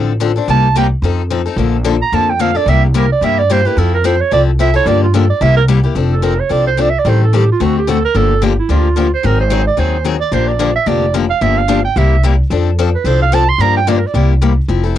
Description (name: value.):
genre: acoustic string swing (jazz manouche).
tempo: 220 BPM.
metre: 4/4.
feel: swing 56% on 8ths.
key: F major.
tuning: A4 = 439 Hz.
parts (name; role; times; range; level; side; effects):
picked steel-string acoustic guitar; accompaniment; 0.0-15.0 s; C3 to A4; -16 LUFS; left 8 dB; cassette tape.
upright bass; bass; 0.0-15.0 s; F1 to G2; -14 LUFS; equal; none.
warm clarinet; melody; 0.5-14.3 s; E4 to C6; -15 LUFS; right 7 dB; cassette tape.
room: moderate booth ambience, RT60 0.2 s.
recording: home recording on cassette.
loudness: -11 LUFS.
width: side -11 dB against mid.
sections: 0.0-6.0 A section; 6.0-14.7 A section.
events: clarinet solo 0.0-6.0, 6.0-15.0.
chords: 0.5 Cm7; 1.0 F7; 1.6 Bbmaj7; 2.7 C7; 3.8 Fmaj7; 4.9 Gm7; 5.4 C7; 6.0 F6; 7.1 Am7b5; 7.6 D7; 8.1 Gm9; 9.2 Ab7; 10.3 Bb6; 11.4 Gm7; 12.0 C7; 12.5 F6; 13.6 Gm7; 14.1 C7.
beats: 0.21 | 0.48 0.76 1.03 1.30 | 1.58 1.85 2.13 2.40 | 2.67 2.95 3.22 3.50 | 3.77 4.04 4.32 4.59 | 4.86 5.14 5.41 5.68 | 5.96 6.23 6.50 6.78 | 7.05 7.32 7.60 7.87 | 8.14 8.42 8.69 8.96 | 9.24 9.51 9.78 10.06 | 10.33 10.60 10.87 11.15 | 11.42 11.69 11.97 12.24 | 12.51 12.78 13.06 13.33 | 13.60 13.88 14.15 14.42 | 14.70 14.97.